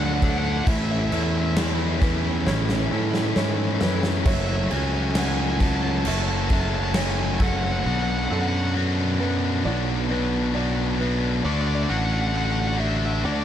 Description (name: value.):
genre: post-rock.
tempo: 67 BPM.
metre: 4/4.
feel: straight.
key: A major.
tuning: A4 = 436 Hz.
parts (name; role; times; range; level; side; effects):
bluesy overdriven lead guitar; melody; 0.0-13.4 s; D5 to A5; -31 LUFS; equal; distortion, digital delay.
rich studio string section; sustained chords; 0.0-7.8 s; D3 to F#5; -36 LUFS; right 1 dB; none.
felt-muted upright piano; arpeggios; 0.0-11.4 s; A4 to F#5; -35 LUFS; right 4 dB; digital delay.
distorted electric guitar; riff; 0.0-13.4 s; A2 to F#4; -26 LUFS; left 1 dB; overdrive.
fuzz fingered electric bass; bass; 0.0-13.4 s; F#1 to A2; -25 LUFS; equal; overdrive.
huge arena drum kit; drums; 0.2-7.6 s; crash cymbal, kick drum, snare drum; -26 LUFS; equal; none.
room: small room ambience.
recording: dark, warm production.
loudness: -20 LUFS.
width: side -10 dB against mid.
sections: 0.0-13.4 A section.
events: drum fill 2.5-4.3.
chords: 0.0 Dmaj7; 0.7 A; 4.3 F#m7; 7.8 Bm7; 11.4 D.